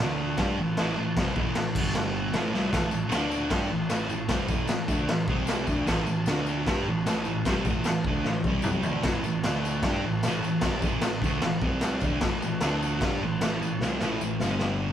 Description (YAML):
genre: garage rock duo or trio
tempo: 152 BPM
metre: 4/4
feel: straight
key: unclear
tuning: A4 = 439 Hz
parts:
  - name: fuzz guitar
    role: riff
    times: 0.0-14.9 s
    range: G2 to G4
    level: -27 LUFS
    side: right 1 dB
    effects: distortion
  - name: fuzz picked electric bass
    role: bass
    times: 0.0-14.9 s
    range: G1 to G2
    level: -35 LUFS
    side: equal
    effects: overdrive
  - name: raw garage drum kit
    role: drums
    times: 0.4-14.7 s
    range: crash cymbal, kick drum, snare drum, toms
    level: -28 LUFS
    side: equal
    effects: none
  - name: tambourine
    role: percussion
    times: 2.7-14.7 s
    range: none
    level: -46 LUFS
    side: left 10 dB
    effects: none
room: moderate large studio reverb, RT60 1.4 s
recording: band playing live in one room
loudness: -24 LUFS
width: side -10 dB against mid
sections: 0.0-14.9 A section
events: drum fill 2.5, 8.3-9.0, 13.8-14.9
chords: 0.0 D5; 0.4 A5; 1.8 G5; 2.3 A5; 3.1 D5; 3.5 A5; 5.3 C5; 5.7 A5; 6.3 D5; 6.7 A5; 8.5 C5; 8.8 A5; 9.4 D5; 9.8 A5; 11.6 C5; 12.0 A5; 12.6 D5; 13.0 A5; 14.4 G5